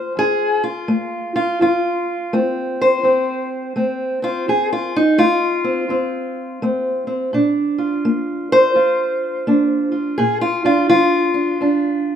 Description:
acoustic country blues, solo or duo; 84 BPM; 4/4; swing 62% on 8ths; F major; A4 = 437 Hz
fingerpicked steel-string acoustic guitar; solo; 0.0-12.2 s; F2 to C5; -16 LUFS; equal
light reverb, studio reverb; rough home demo mix; -16 LUFS; side -8 dB against mid
0.0-12.2 A section
steel-string acoustic guitar solo 0.0-12.2
0.0 F; 7.3 Bb
0.17 0.89 | 1.60 2.32 3.03 3.75 | 4.46 5.18 5.89 6.61 | 7.32 8.04 8.75 9.46 | 10.17 10.88 11.60

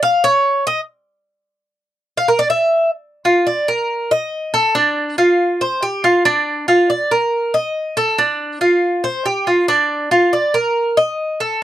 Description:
latin; 140 BPM; 4/4; straight; A4 = 442 Hz
Cuban tres; solo; 0.0-11.6 s; D4 to F5; -14 LUFS; equal
light reverb; dry, close 1970s-style studio recording; -14 LUFS; side -12 dB against mid
0.0-3.0 A section; 3.0-11.6 B section
Cuban tres solo 0.0-3.0
0.02 0.45 0.88 | 1.31 1.74 2.17 2.60 | 3.03 3.46 3.89 4.32 | 4.75 5.18 5.61 6.04 | 6.46 6.89 7.32 7.75 | 8.18 8.61 9.04 9.47 | 9.90 10.33 10.75 11.18

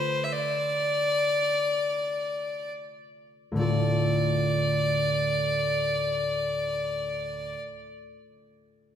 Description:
celtic folk, Celtic slow air; free time; D minor; A4 = 438 Hz
bright fiddle; melody; 0.0-7.6 s; C5 to E5; -26 LUFS; left 1 dB
concert harp; accompaniment; 0.0-7.6 s; D2 to A4; -29 LUFS; right 1 dB
wet scoring stage reverb, RT60 2.0 s; recorded in a church or concert hall; -24 LUFS; side -9 dB against mid
0.0-3.6 A section; 3.6-9.0 B section
slowing down 0.0-3.6
0.0 Dm
free time

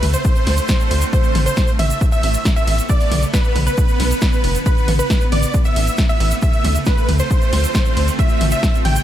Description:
uplifting trance; 136 BPM; 4/4; straight; A minor; A4 = 440 Hz
dense compressed supersaw; melody; 0.0-9.0 s; B4 to G5; -23 LUFS; right 1 dB; sidechain pumping, ping-pong delay
wide unison pluck; second line; 0.0-9.0 s; B4 to G5; -29 LUFS; equal; sidechain pumping, ping-pong delay
shimmering ambient pad; sustained chords; 0.0-9.0 s; C3 to F4; -25 LUFS; right 2 dB; chorus, built-in reverb, sidechain pumping
tight sequencer bass; bass; 0.0-9.0 s; F1 to D2; -18 LUFS; equal; sidechain pumping
punchy analog drum machine; drums; 0.0-9.0 s; hi-hat, ride cymbal, snare drum, toms; -23 LUFS; left 1 dB; overdrive
tube shaker; percussion; 0.1-9.0 s; -31 LUFS; right 5 dB
electronic kick drum; drums; 0.2-8.7 s; -17 LUFS; equal
little or no reverb; -14 LUFS; side -12 dB against mid
0.0-9.0 A section
0.0 Dm7; 1.1 Amadd9; 2.9 Bdim; 4.7 Amadd9; 6.4 Dm7; 8.2 Amadd9
0.25 0.69 | 1.13 1.57 2.01 2.45 | 2.89 3.34 3.78 4.22 | 4.66 5.10 5.54 5.98 | 6.42 6.87 7.31 7.75 | 8.19 8.63

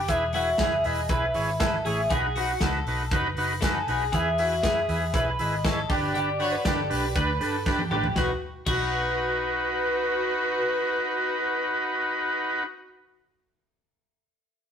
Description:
jangly indie pop; 119 BPM; 4/4; straight; B mixolydian; A4 = 440 Hz
warbly nostalgic lead; melody; 0.0-12.6 s; B4 to G#5; -29 LUFS; left 1 dB; chorus
twelve-string electric guitar; arpeggios; 0.0-9.6 s; F#4 to B4; -31 LUFS; equal
vintage muted fingered electric bass; bass; 0.0-12.6 s; E1 to G2; -32 LUFS; equal
combo organ; accompaniment; 0.1-12.6 s; D4 to C#5; -27 LUFS; equal
modern studio drum kit; drums; 0.1-8.8 s; crash cymbal, hi-hat, kick drum, snare drum, toms; -30 LUFS; equal
warm studio violin section; second line; 6.4-12.6 s; F#4 to C#5; -35 LUFS; equal
moderate stone room reverb, RT60 1.0 s; rough rehearsal-room recording; -23 LUFS; side -8 dB against mid
0.0-8.2 A section; 8.2-12.2 B section
drum fill 7.7-8.2
0.1 E; 2.1 B; 4.1 E; 5.9 G; 8.2 B
| 0.09 0.59 1.10 1.60 | 2.11 2.61 3.12 3.62 | 4.13 4.63 5.14 5.64 | 6.15 6.65 7.16 7.66 | 8.16 8.67 9.18 9.68 | 10.18 10.69 11.19 11.70

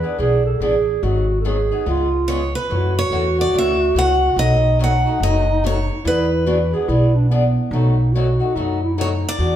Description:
acoustic string swing (jazz manouche); 144 BPM; 4/4; swing 63% on 8ths; A4 = 440 Hz
breathy clarinet; second line; 0.0-9.6 s; B3 to B4; -21 LUFS; right 3 dB
picked old ladder-braced acoustic guitar; accompaniment; 0.0-9.6 s; B2 to G#4; -25 LUFS; left 4 dB
upright bass; bass; 0.2-9.6 s; F#1 to F#2; -19 LUFS; equal
picked steel-string acoustic guitar; melody; 2.3-9.6 s; B4 to F#5; -21 LUFS; equal
wet large studio reverb, RT60 1.4 s; band playing live in one room; -15 LUFS; side -11 dB against mid
0.0-9.4 A section
0.0 E7; 1.0 G#m7; 1.9 C#7; 2.7 F#m7; 4.4 B7; 6.0 E7; 7.7 B7
0.20 0.61 | 1.03 1.45 1.87 2.29 | 2.71 3.12 3.54 3.96 | 4.38 4.79 5.21 5.63 | 6.05 6.47 6.88 7.30 | 7.72 8.14 8.55 8.97 | 9.39

